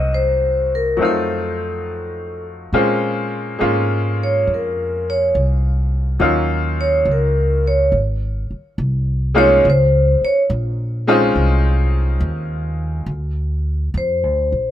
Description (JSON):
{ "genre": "jazz ballad", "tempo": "70 BPM", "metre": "4/4", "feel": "swing 67% on 8ths", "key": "Bb minor", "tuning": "A4 = 440 Hz", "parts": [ { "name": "vibraphone with medium hard mallets", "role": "melody", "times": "0.0-14.7 s", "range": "A4 to Eb5", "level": "-17 LUFS", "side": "equal", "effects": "none" }, { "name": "bright upright piano", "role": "accompaniment", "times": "0.0-13.1 s", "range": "Gb3 to Gb4", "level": "-20 LUFS", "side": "left 2 dB", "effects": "none" }, { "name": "upright bass", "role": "bass", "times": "0.0-14.7 s", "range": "Ab1 to Bb2", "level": "-19 LUFS", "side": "equal", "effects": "none" } ], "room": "light reverb", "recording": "minimal, uncompressed stereo recording", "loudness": "-15 LUFS", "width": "side -12 dB against mid", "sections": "0.0-2.7 A section; 2.7-14.7 B section", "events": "vibraphone solo 2.7-14.7", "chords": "0.0 Cm7b5; 1.0 F7b9; 2.7 Bbm9; 6.2 Ebm9; 7.9 Ab69; 9.6 Dbmaj9; 13.1 Bb (rootless)" }